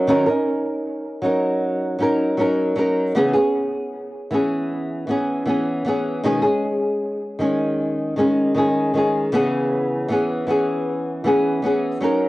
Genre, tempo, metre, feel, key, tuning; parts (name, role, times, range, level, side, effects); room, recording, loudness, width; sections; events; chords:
indie pop; 78 BPM; 4/4; straight; C# dorian; A4 = 441 Hz
flamenco guitar; solo; 0.0-12.3 s; B2 to A#4; -18 LUFS; equal; lush chorus, vibrato effect, cassette tape
moderate studio reverb, RT60 0.5 s; home recording on cassette; -18 LUFS; side -18 dB against mid
0.0-9.3 A section; 9.3-12.3 B section
0.0 D#m7; 3.2 C#m7; 6.2 B69 (rootless); 9.3 C#m7